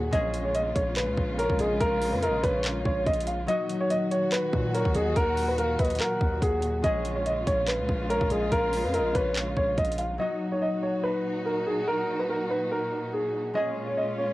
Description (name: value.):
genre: hip hop, trap.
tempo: 143 BPM.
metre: 4/4.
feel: half-time.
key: Eb minor.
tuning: A4 = 441 Hz.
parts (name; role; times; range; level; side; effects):
dark concert grand piano; melody; 0.0-14.3 s; Ab4 to F5; -27 LUFS; equal; cassette tape.
gliding portamento lead; second line; 0.0-9.7 s; Db5 to Gb5; -36 LUFS; left 3 dB; chorus, tape echo.
concert harp; accompaniment; 0.0-14.3 s; Gb3 to Ab4; -36 LUFS; left 2 dB; none.
dark chamber string section; sustained chords; 0.0-14.3 s; Bb2 to Gb4; -33 LUFS; right 1 dB; none.
distorted 808-style bass; bass; 0.0-10.2 s; Bb1 to Bb2; -31 LUFS; equal; distortion.
trap drum kit; drums; 0.1-10.1 s; handclaps, hi-hat, kick drum; -30 LUFS; equal; cassette tape.
room: light reverb.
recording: home recording on cassette.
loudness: -24 LUFS.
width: side -17 dB against mid.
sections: 0.0-10.2 A section; 10.2-14.3 B section.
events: kick muted 3.5-4.3.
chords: 0.1 Bbm7; 3.5 Ebm; 6.8 Bbm7; 10.2 Ebm; 13.6 Bbm7.